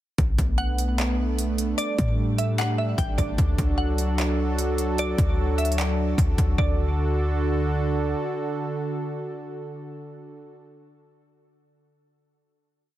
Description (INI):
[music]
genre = hip hop, atmospheric cloud-rap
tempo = 150 BPM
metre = 4/4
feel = half-time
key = D major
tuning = A4 = 440 Hz
[part]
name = warm analog pad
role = sustained chords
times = 0.4-10.5 s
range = D3 to A4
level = -27 LUFS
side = right 1 dB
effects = chorus, sidechain pumping
[part]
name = clean 808-style bass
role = bass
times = 0.2-8.1 s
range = A1 to A2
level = -24 LUFS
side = equal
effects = none
[part]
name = techno drum kit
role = drums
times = 0.2-6.7 s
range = handclaps, hi-hat, kick drum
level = -27 LUFS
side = equal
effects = none
[part]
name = glassy wavetable pluck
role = melody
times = 0.6-7.7 s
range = D5 to G5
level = -31 LUFS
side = right 1 dB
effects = chorus, tape echo
[sound]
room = digital ambience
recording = dense, heavily limited modern master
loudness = -22 LUFS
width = side -13 dB against mid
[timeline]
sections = 0.2-6.6 verse; 6.6-9.8 final chord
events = none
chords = 0.2 Bm7; 1.8 A7sus4; 3.4 D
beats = | 0.18 0.58 0.98 1.38 | 1.78 2.18 2.58 2.98 | 3.38 3.78 4.18 4.58 | 4.98 5.38 5.78 6.18 | 6.58 6.98 7.38 7.78 | 8.18 8.58 8.98 9.38